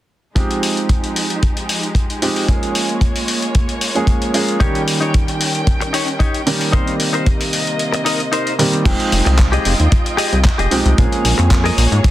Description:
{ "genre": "nu-disco, nu disco", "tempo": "113 BPM", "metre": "4/4", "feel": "straight", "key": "F minor", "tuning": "A4 = 440 Hz", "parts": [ { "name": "warm baby grand piano", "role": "accompaniment", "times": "0.4-12.1 s", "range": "Eb3 to G5", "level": "-20 LUFS", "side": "right 2 dB", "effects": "sidechain pumping, tape echo" }, { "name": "muted studio string section", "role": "sustained chords", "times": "0.4-12.1 s", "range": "C3 to G5", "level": "-24 LUFS", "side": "equal", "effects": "sidechain pumping" }, { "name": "dusty soul sampler-style drum kit", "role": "drums", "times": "0.4-12.1 s", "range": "crash cymbal, handclaps, hi-hat", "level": "-21 LUFS", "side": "left 1 dB", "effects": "overdrive" }, { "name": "kick drum", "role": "drums", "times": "0.4-12.1 s", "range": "none", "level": "-16 LUFS", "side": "equal", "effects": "soft clipping on snare" }, { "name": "direct-recorded clean electric guitar", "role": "riff", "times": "4.6-12.1 s", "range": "Eb4 to Eb5", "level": "-22 LUFS", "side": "left 3 dB", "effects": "wide subtle chorus, tape echo" }, { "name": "chorused synth bass", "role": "bass", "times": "8.9-12.0 s", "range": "F1 to Ab2", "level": "-15 LUFS", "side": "equal", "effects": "tube saturation" } ], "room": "light reverb, small room ambience", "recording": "dense, heavily limited modern master", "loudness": "-14 LUFS", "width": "side -14 dB against mid", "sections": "0.4-8.9 A section; 8.9-12.1 B section", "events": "kick drops out 7.8-8.9", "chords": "0.4 Fm9; 2.5 Bbm7; 4.6 Eb7; 6.7 Cm7; 8.9 Fm9; 11.0 Bbm7", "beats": "| 0.36 0.89 1.43 1.96 | 2.49 3.02 3.55 4.08 | 4.61 5.14 5.67 6.20 | 6.74 7.26 7.80 8.33 | 8.86 9.39 9.92 10.45 | 10.98 11.51 12.04" }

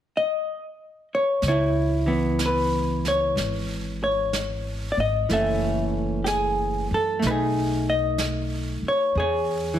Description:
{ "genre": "jazz ballad", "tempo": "62 BPM", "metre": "4/4", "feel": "swing 66% on 8ths", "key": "C# minor", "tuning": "A4 = 441 Hz", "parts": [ { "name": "vintage hollow-body jazz guitar", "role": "accompaniment", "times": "0.2-9.8 s", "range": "E3 to E5", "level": "-23 LUFS", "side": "left 1 dB", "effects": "none" }, { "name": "upright bass", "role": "bass", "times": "1.4-9.8 s", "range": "F#1 to F#2", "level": "-28 LUFS", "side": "equal", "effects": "none" }, { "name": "jazz brush drum kit", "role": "drums", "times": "1.4-9.8 s", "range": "brushed snare drum, hi-hat, snare drum", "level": "-34 LUFS", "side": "right 4 dB", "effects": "none" } ], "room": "light reverb", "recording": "heavily compressed radio sound", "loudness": "-22 LUFS", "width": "side -10 dB against mid", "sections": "0.0-1.4 A section; 1.4-9.8 B section", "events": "none", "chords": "0.0 N.C.; 1.4 C#m7; 5.3 F#m7; 7.2 B6; 9.1 E", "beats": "0.46 | 1.43 2.40 3.36 4.33 | 5.29 6.26 7.22 8.18 | 9.14" }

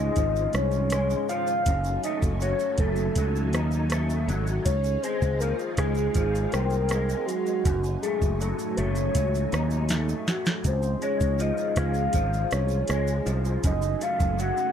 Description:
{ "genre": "indie pop, bedroom pop", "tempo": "80 BPM", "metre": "4/4", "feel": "straight", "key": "Db major", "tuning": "A4 = 440 Hz", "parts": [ { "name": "soft octave-layered synth lead", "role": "melody", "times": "0.0-14.7 s", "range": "Gb4 to Gb5", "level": "-28 LUFS", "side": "left 1 dB", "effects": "wide subtle chorus, tape echo" }, { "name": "electric guitar through a small old amp", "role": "accompaniment", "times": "0.0-14.7 s", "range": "Gb2 to Eb4", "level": "-32 LUFS", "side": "left 2 dB", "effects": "ensemble chorus, vibrato effect" }, { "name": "string machine, cellos", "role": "sustained chords", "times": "0.0-14.7 s", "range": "F3 to Ab5", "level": "-35 LUFS", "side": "right 1 dB", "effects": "phaser, ensemble chorus" }, { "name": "fretless electric bass", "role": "bass", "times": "0.0-14.5 s", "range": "Gb1 to Eb2", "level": "-26 LUFS", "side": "equal", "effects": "none" }, { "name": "soft vintage rhythm box", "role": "drums", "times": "0.2-14.7 s", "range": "hi-hat, kick drum, rim click, shaker, snare drum", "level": "-28 LUFS", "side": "right 1 dB", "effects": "none" }, { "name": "egg shaker", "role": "percussion", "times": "0.2-14.7 s", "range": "none", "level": "-46 LUFS", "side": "right 15 dB", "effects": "none" } ], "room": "little or no reverb", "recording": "dry, close 1970s-style studio recording", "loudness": "-23 LUFS", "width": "side -8 dB against mid", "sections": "0.0-14.7 A section", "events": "drum fill 9.9-10.6", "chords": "0.0 Dbmaj7; 1.7 Gbm6; 4.7 Dbmaj7; 7.7 Gbm6; 10.6 Dbmaj7; 13.6 Gbm6", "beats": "0.17 0.92 | 1.66 2.41 3.16 3.91 | 4.66 5.41 6.16 6.90 | 7.65 8.40 9.15 9.90 | 10.65 11.39 12.14 12.89 | 13.64 14.39" }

